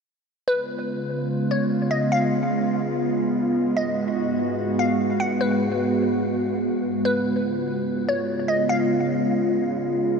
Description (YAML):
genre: hip hop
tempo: 146 BPM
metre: 4/4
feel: half-time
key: unclear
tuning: A4 = 440 Hz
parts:
  - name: glassy wavetable pluck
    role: melody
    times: 0.5-9.1 s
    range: B4 to F#5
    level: -27 LUFS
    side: left 1 dB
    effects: chorus, low-pass filter, analog delay
  - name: warbly tape-like pad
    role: sustained chords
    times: 0.7-10.2 s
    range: G#2 to F#4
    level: -22 LUFS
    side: right 1 dB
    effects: chorus, built-in reverb
room: wet huge ambient reverb, RT60 8.2 s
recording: dreamy mix soaked in reverb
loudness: -21 LUFS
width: side -5 dB against mid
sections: 0.5-10.2 A section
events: none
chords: 0.5 C#7; 3.8 G#m7; 7.1 C#7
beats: | 0.48 0.89 1.30 1.71 | 2.12 2.53 2.94 3.35 | 3.77 4.18 4.59 5.00 | 5.41 5.82 6.23 6.64 | 7.05 7.46 7.88 8.29 | 8.70 9.11 9.52 9.93